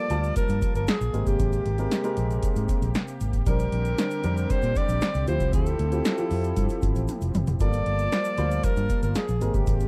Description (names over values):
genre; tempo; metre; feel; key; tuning
early-eighties boogie funk; 116 BPM; 4/4; straight; G dorian; A4 = 445 Hz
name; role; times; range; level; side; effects
breathy alto saxophone; melody; 0.0-9.9 s; G4 to D5; -32 LUFS; equal; none
dark grand piano; accompaniment; 0.0-9.9 s; F3 to A5; -34 LUFS; equal; none
brassy analog pad; sustained chords; 0.0-9.9 s; C3 to A5; -38 LUFS; equal; chorus
vintage muted fingered electric bass; bass; 0.1-9.9 s; F1 to Bb2; -28 LUFS; equal; none
electro analog drum machine; drums; 0.1-9.9 s; hi-hat, kick drum, snare drum, toms; -28 LUFS; equal; overdrive
egg shaker; percussion; 0.1-9.9 s; none; -53 LUFS; equal; none
room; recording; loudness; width
little or no reverb; dry, close 1970s-style studio recording; -25 LUFS; mono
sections
0.0-9.9 A section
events
drum fill 7.1-7.6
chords
0.0 Gm9; 1.1 Abmaj9; 3.5 Bb69; 5.3 Dm11; 7.6 Gm9